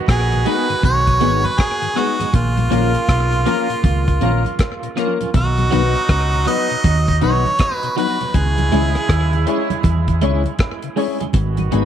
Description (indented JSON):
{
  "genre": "roots reggae",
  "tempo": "80 BPM",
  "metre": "4/4",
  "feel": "swing 63% on 16ths",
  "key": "G# minor",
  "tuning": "A4 = 440 Hz",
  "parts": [
    { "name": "mellow horn section", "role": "second line", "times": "0.0-11.8 s", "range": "B2 to F#4", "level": "-27 LUFS", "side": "right 11 dB", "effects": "dub echo" },
    { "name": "clear harmonica", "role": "melody", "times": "0.1-9.5 s", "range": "E#4 to D#5", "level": "-21 LUFS", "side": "right 1 dB", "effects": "dub echo" },
    { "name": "hollow-body short-scale fingered electric bass", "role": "bass", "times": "0.1-11.8 s", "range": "G#1 to E2", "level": "-18 LUFS", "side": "equal", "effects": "none" },
    { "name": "deep reggae drum kit", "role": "drums", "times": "0.1-11.8 s", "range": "hi-hat, kick drum, rim click", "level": "-20 LUFS", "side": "equal", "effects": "none" },
    { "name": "tonewheel organ", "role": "accompaniment", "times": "0.3-11.8 s", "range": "G#2 to E4", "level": "-26 LUFS", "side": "left 11 dB", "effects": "chorus vibrato, slow rotary speaker, slapback echo" },
    { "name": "clean electric guitar", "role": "accompaniment", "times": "0.5-11.8 s", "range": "E#3 to G#4", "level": "-27 LUFS", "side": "right 10 dB", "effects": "tremolo, dub echo" },
    { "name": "warm upright piano", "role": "stabs", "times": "0.5-11.8 s", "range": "A#3 to C#5", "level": "-25 LUFS", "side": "left 11 dB", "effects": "none" },
    { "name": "congas", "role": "percussion", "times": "0.8-11.8 s", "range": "none", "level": "-27 LUFS", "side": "right 9 dB", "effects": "none" }
  ],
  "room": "moderate spring reverb, RT60 2.3 s",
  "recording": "1960s-style stereo with parts hard left and right",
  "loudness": "-15 LUFS",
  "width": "side -9 dB against mid",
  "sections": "0.0-11.8 A section",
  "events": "none",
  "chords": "0.0 G#m; 2.3 A#m; 5.3 B; 8.3 C#m; 11.3 G#m"
}